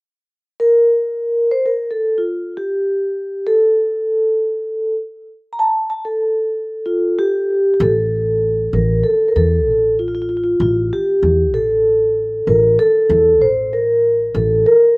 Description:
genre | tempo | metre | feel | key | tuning
Arabic maqam ensemble | free time | none | none | A maqam kurd | A4 = 440 Hz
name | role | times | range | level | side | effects
vibraphone with soft mallets | melody | 0.6-15.0 s | F4 to Bb5 | -14 LUFS | equal | none
upright bass | bass | 7.8-14.6 s | A1 to E2 | -20 LUFS | equal | none
room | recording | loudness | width
little or no reverb | recorded outdoors, with no room sound | -14 LUFS | side -32 dB against mid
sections
0.3-7.8 A section; 7.8-15.0 B section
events
none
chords
none

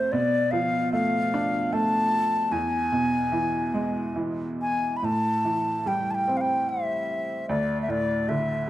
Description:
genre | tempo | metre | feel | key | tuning
celtic folk, Celtic slow air | 73 BPM | 3/4 | uneven beats, rubato | A minor | A4 = 440 Hz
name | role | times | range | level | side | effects
bright baroque flute | melody | 0.0-8.7 s | C5 to B5 | -25 LUFS | left 1 dB | none
bright upright piano | accompaniment | 0.0-8.7 s | D2 to D4 | -27 LUFS | right 1 dB | none
room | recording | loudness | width
moderate recital hall reverb, RT60 1.7 s | dark, warm production | -23 LUFS | side -14 dB against mid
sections
0.0-5.0 A section; 5.0-8.7 B section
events
none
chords
0.1 Bm7b5; 2.5 E; 5.0 Am7; 7.5 D5

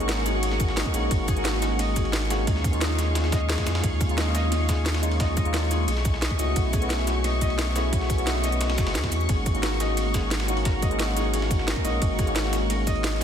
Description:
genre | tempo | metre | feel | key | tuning
liquid drum and bass | 176 BPM | 4/4 | straight | G# minor | A4 = 440 Hz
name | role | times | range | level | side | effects
tine electric piano | accompaniment | 0.0-13.2 s | G#3 to F#4 | -29 LUFS | equal | analog chorus, ping-pong delay
rich studio string section | sustained chords | 0.0-13.2 s | A3 to C#6 | -32 LUFS | left 2 dB | none
concert harp | arpeggios | 0.0-13.2 s | G#4 to D#5 | -33 LUFS | left 4 dB | ping-pong delay
warm sub bass | bass | 0.0-13.2 s | F#1 to E#2 | -26 LUFS | equal | none
garage drum kit | drums | 0.0-13.2 s | cabasa, hi-hat, snare drum | -31 LUFS | right 1 dB | none
dusty soul sampler-style drum kit | drums | 0.1-13.2 s | ride cymbal, snare drum | -35 LUFS | right 2 dB | overdrive, high-pass filter on cymbals, high-pass filter on snare
electronic kick drum | drums | 0.6-12.9 s | none | -26 LUFS | equal | none
room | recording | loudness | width
light reverb | dense, heavily limited modern master | -22 LUFS | side -8 dB against mid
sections
0.0-13.2 A section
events
none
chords
0.0 G#9sus4; 2.5 D#9sus4; 5.9 B9sus4; 9.3 G#9sus4

